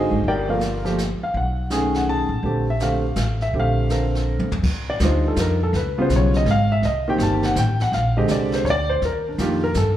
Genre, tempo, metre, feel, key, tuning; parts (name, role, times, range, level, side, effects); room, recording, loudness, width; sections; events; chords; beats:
jazz piano trio; 164 BPM; 3/4; swing 64% on 8ths; Bb major; A4 = 440 Hz
warm concert grand piano; melody; 0.0-9.9 s; Db3 to A5; -21 LUFS; equal; slapback echo
upright bass; bass; 0.0-10.0 s; G1 to G2; -22 LUFS; equal
jazz brush drum kit; drums; 0.2-10.0 s; brushed snare drum, crash cymbal, hi-hat, kick drum, snare drum, toms; -29 LUFS; equal
light reverb, small room reverb; live gig heard through the venue's PA, club ambience; -18 LUFS; side -12 dB against mid
0.0-4.6 A section; 4.6-10.0 B section
drum fill 4.3-4.6
0.2 Gm9; 1.3 B13; 2.4 Bbmaj13; 4.6 Ebmaj9; 5.7 Db7#11; 6.8 Cm7; 7.9 Bb13; 9.0 Ebmaj7
| 0.24 0.61 0.98 | 1.34 1.71 2.07 | 2.44 2.81 3.17 | 3.54 3.90 4.27 | 4.64 5.00 5.37 | 5.74 6.10 6.47 | 6.83 7.20 7.57 | 7.93 8.30 8.66 | 9.03 9.39 9.76